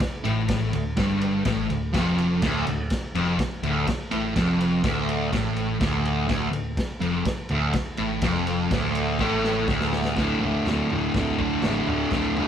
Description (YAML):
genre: garage rock duo or trio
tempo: 124 BPM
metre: 4/4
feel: straight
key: unclear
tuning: A4 = 440 Hz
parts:
  - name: fuzz guitar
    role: riff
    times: 0.0-12.5 s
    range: D2 to D3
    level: -23 LUFS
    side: equal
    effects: distortion
  - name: picked electric bass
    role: bass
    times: 0.0-12.4 s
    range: D1 to A1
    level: -31 LUFS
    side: equal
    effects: overdrive
  - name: crunchy breakbeat drum kit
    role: drums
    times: 0.0-12.5 s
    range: crash cymbal, kick drum, ride cymbal, snare drum, toms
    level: -29 LUFS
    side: equal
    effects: none
room: light reverb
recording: band playing live in one room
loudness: -22 LUFS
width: side -9 dB against mid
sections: 0.0-10.2 A section; 10.2-12.5 B section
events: drum fill 9.2-10.2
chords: 0.0 D5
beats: 0.00 | 0.49 0.97 1.46 1.94 | 2.42 2.91 3.39 3.87 | 4.36 4.84 5.32 5.80 | 6.29 6.77 7.25 7.74 | 8.22 8.71 9.19 9.68 | 10.17 10.65 11.14 11.63 | 12.12